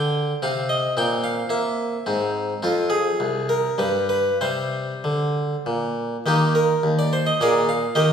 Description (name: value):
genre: classical, baroque-style suite movement for harpsichord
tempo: 94-112 BPM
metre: 3/4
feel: rubato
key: unclear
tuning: A4 = 440 Hz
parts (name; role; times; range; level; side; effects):
- harpsichord; solo; 0.0-8.1 s; C2 to G5; -20 LUFS; equal; none
room: wet recital hall reverb, RT60 1.3 s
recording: heard from further back in the room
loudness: -20 LUFS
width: side -7 dB against mid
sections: 0.0-6.3 A section; 6.3-8.1 A section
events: none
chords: 0.4 N.C.; 1.0 C7/Bb; 2.1 Ab; 2.6 Fm; 3.8 N.C.; 4.4 C5; 6.3 Eb5; 7.4 Bb7